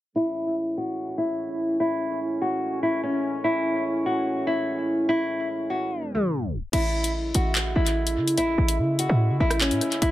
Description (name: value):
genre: hip hop, drill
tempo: 146 BPM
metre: 4/4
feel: half-time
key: unclear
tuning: A4 = 441 Hz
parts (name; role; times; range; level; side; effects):
- nylon-string guitar; melody; 0.2-10.1 s; C#4 to F#4; -24 LUFS; equal; low-pass filter, tape echo
- dark brass ensemble; sustained chords; 0.2-10.1 s; A2 to E4; -32 LUFS; right 1 dB; low-pass filter
- short 808-style bass; bass; 6.7-10.1 s; A1 to C#3; -24 LUFS; equal; none
- drill drum kit; drums; 6.7-10.1 s; crash cymbal, handclaps, hi-hat, rim click; -28 LUFS; left 1 dB; tape echo
room: light reverb, studio ambience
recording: echo-heavy mix, tape stop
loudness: -22 LUFS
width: side -14 dB against mid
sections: 0.2-6.7 A section; 6.7-10.1 B section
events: filter sweep 0.2-6.7; tape stop 5.9-6.7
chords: 0.2 Amaj7